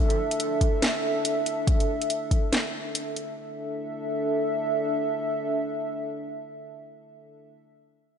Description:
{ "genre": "deep dubstep", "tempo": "141 BPM", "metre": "4/4", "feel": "swing 60% on 16ths, half-time", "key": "unclear", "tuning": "A4 = 440 Hz", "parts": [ { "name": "dark analog pad", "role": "sustained chords", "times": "0.0-7.5 s", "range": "D4 to E5", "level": "-27 LUFS", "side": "right 1 dB", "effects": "chorus" }, { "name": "garage drum kit", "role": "drums", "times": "0.1-3.3 s", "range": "hi-hat, snare drum", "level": "-28 LUFS", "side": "equal", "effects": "studio reverb" }, { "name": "electronic kick drum", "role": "drums", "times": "0.6-2.4 s", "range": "none", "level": "-23 LUFS", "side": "equal", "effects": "overdrive, studio reverb" } ], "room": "moderate lush hall reverb, RT60 2.2 s", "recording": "nothing above 10.9 kHz", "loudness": "-24 LUFS", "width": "side -7 dB against mid", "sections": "0.0-3.4 A section; 3.4-6.8 B section", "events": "none", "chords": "0.0 D5" }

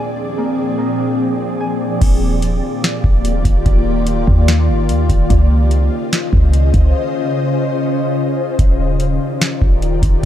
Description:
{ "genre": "hip hop, atmospheric cloud-rap", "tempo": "146 BPM", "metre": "4/4", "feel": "half-time", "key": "Eb major", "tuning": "A4 = 441 Hz", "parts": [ { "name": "ethereal airy pad", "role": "sustained chords", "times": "0.0-10.3 s", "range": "Bb2 to Eb5", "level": "-18 LUFS", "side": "left 1 dB", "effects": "ensemble chorus, built-in reverb, sidechain pumping, low-pass filter" }, { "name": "Celtic harp", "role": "arpeggios", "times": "0.0-4.6 s", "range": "Bb3 to Ab5", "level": "-26 LUFS", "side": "left 2 dB", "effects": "low-pass filter, digital delay" }, { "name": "clean 808-style bass", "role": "bass", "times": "2.0-10.2 s", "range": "Eb1 to Eb2", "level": "-14 LUFS", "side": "equal", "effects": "none" }, { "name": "booming analog drum machine", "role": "drums", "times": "2.0-10.2 s", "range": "crash cymbal, hi-hat, kick drum, snare drum", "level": "-15 LUFS", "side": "equal", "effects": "none" } ], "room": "little or no reverb", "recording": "dark, warm production", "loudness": "-13 LUFS", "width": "side -11 dB against mid", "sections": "0.0-2.0 A section; 2.0-10.3 B section", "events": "break 6.9-8.6", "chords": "0.0 Bb7; 2.0 Ebmaj7; 5.3 Dbmaj7; 8.6 Ebmaj7" }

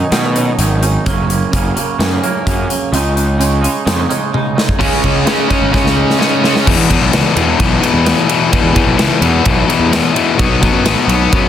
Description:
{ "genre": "quiet-loud alternative rock", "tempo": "129 BPM", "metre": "4/4", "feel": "straight", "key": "unclear", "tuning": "A4 = 439 Hz", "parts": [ { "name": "twangy electric guitar", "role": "arpeggios", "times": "0.0-6.7 s", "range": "F#2 to D#4", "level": "-18 LUFS", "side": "right 4 dB", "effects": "lush chorus" }, { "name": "fuzz picked electric bass", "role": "bass", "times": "0.1-11.5 s", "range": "F#1 to B2", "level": "-16 LUFS", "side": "equal", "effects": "overdrive" }, { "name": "big rock drum kit", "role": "drums", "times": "0.1-11.4 s", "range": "crash cymbal, hi-hat, kick drum, ride cymbal, snare drum, toms", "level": "-16 LUFS", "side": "equal", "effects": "none" }, { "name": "distorted electric guitar", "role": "riff", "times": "4.8-11.5 s", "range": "E2 to C#4", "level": "-13 LUFS", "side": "left 6 dB", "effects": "overdrive" }, { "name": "fuzz guitar", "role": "riff", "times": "4.8-6.7 s", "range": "C#3 to C#4", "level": "-17 LUFS", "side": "right 14 dB", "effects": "distortion" } ], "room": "small room ambience", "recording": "dense, heavily limited modern master", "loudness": "-11 LUFS", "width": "side -10 dB against mid", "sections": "0.0-4.8 A section; 4.8-6.7 B section; 6.7-11.5 C section", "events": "half time 0.0-4.8; drum fill 4.3-4.8, 5.7-6.7", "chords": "0.0 Badd9; 1.1 F#; 2.9 C#sus2; 6.7 E5; 10.4 B5" }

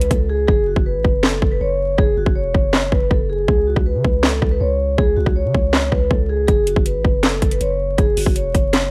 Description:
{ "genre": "hip hop, trap", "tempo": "160 BPM", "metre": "4/4", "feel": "half-time", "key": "F# minor", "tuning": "A4 = 440 Hz", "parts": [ { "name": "vibraphone with medium mallets", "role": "melody", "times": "0.0-8.9 s", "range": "F#4 to C#5", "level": "-23 LUFS", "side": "equal", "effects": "none" }, { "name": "long sustained 808-style bass", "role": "bass", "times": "0.0-8.9 s", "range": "E1 to C#3", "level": "-24 LUFS", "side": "equal", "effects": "none" }, { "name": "trap drum kit", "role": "drums", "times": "0.0-8.8 s", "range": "handclaps, hi-hat, kick drum, snare drum", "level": "-19 LUFS", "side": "equal", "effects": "none" } ], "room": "little or no reverb", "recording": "dry, gritty hardware recording, vinyl crackle", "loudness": "-17 LUFS", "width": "mono", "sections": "0.5-8.9 A section", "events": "hi-hats muted 0.5-6.5", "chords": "0.5 F#5; 3.5 N.C.; 6.5 F#5" }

